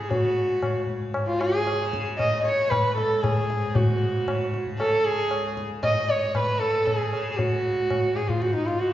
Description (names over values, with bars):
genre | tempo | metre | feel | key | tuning
indian classical, Hindustani | 115 BPM | 7/4 | straight | unclear | A4 = 440 Hz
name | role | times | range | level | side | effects
dark sarangi | melody | 0.0-8.9 s | D#4 to D#5 | -24 LUFS | right 1 dB | none
tanpura | drone | 0.0-8.9 s | C#2 to C#3 | -33 LUFS | left 1 dB | none
tabla | percussion | 0.1-8.9 s | none | -28 LUFS | left 1 dB | none
room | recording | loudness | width
wet recital hall reverb, RT60 1.5 s | heard from further back in the room, nothing above 7.5 kHz | -22 LUFS | side -13 dB against mid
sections
0.0-8.9 A section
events
none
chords
none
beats
| 0.10 0.62 1.15 1.67 2.19 2.71 3.23 | 3.76 4.28 4.80 5.32 5.83 6.35 6.87 | 7.39 7.90 8.42